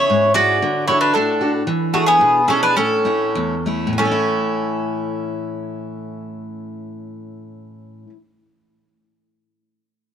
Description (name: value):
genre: greek folk, Greek bouzouki band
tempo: 91-113 BPM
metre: 2/4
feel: straight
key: A major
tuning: A4 = 440 Hz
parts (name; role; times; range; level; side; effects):
- Greek bouzouki; melody; 0.0-8.1 s; F#4 to D5; -18 LUFS; equal; none
- mandolin; second line; 0.0-8.1 s; A3 to F#4; -21 LUFS; right 3 dB; none
- picked steel-string acoustic guitar; accompaniment; 0.0-8.2 s; E2 to A4; -23 LUFS; left 1 dB; none
room: light reverb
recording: none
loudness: -16 LUFS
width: side -8 dB against mid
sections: 0.0-4.0 A section; 4.0-6.6 B section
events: slowing down 1.7-4.0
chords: 0.0 C#m; 0.6 D; 1.7 E7; 2.8 A